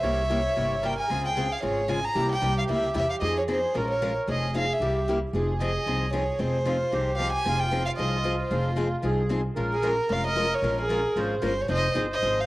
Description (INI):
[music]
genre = acoustic string swing (jazz manouche)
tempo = 227 BPM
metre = 4/4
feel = swing 55% on 8ths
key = F minor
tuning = A4 = 439 Hz
[part]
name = warm violin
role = melody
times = 0.0-12.5 s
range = Ab4 to Bb5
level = -27 LUFS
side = equal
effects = cassette tape
[part]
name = accordion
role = second line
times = 0.0-12.5 s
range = F4 to Db5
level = -31 LUFS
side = right 2 dB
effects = light tremolo tuning, cassette tape
[part]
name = picked steel-string acoustic guitar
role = accompaniment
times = 0.0-12.4 s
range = C3 to Bb4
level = -31 LUFS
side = left 2 dB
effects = cassette tape
[part]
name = upright bass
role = bass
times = 0.0-12.4 s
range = F1 to F2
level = -30 LUFS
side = equal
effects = none
[sound]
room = moderate spring reverb, RT60 1.9 s, small room ambience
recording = home recording on cassette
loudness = -23 LUFS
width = side -18 dB against mid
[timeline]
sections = 0.0-5.3 A section; 5.3-12.5 A section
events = none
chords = 0.0 C7b9; 1.1 Dbmaj7; 2.2 C7b9; 3.2 Fm7; 3.7 Bbm7; 4.3 Fm7; 4.8 C7; 5.3 Fm7; 9.6 Bbm7; 11.7 Fm7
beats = | 0.04 0.30 0.57 0.83 | 1.10 1.36 1.63 1.89 | 2.16 2.42 2.69 2.95 | 3.21 3.48 3.75 4.01 | 4.28 4.54 4.80 5.07 | 5.33 5.60 5.86 6.13 | 6.39 6.66 6.92 7.19 | 7.45 7.71 7.98 8.24 | 8.51 8.77 9.04 9.30 | 9.57 9.83 10.10 10.36 | 10.62 10.89 11.15 11.42 | 11.68 11.95 12.21